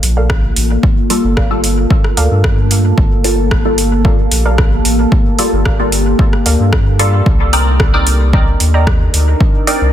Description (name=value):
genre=dub techno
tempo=112 BPM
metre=4/4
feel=straight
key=G minor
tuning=A4 = 440 Hz
part: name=deep dark ambient pad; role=sustained chords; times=0.0-9.9 s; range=Bb3 to Bb4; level=-19 LUFS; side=equal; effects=chorus, built-in reverb, sidechain pumping
part: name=warm sub bass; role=bass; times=0.0-9.9 s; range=G1 to G2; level=-14 LUFS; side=equal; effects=sidechain pumping
part: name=deep house drum kit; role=drums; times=0.0-9.8 s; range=hi-hat, rim click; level=-19 LUFS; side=right 1 dB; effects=overdrive, studio reverb
part: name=warbly dusty pluck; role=riff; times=0.2-8.9 s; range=A4 to Bb5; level=-24 LUFS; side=right 3 dB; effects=chorus, sidechain pumping, dub echo
part: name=electronic kick drum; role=drums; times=0.3-9.5 s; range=none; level=-13 LUFS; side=equal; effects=studio reverb
part: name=filtered dub chord stab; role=stabs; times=1.1-9.8 s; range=G3 to D5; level=-18 LUFS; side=left 1 dB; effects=phaser, sidechain pumping, dub echo
room=digital ambience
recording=dense, heavily limited modern master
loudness=-10 LUFS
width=side -11 dB against mid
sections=0.0-9.9 A section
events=none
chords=0.0 Gm9; 7.3 Cm9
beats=0.30 | 0.83 1.37 1.91 2.44 | 2.98 3.51 4.05 4.58 | 5.12 5.66 6.19 6.73 | 7.26 7.80 8.33 8.87 | 9.40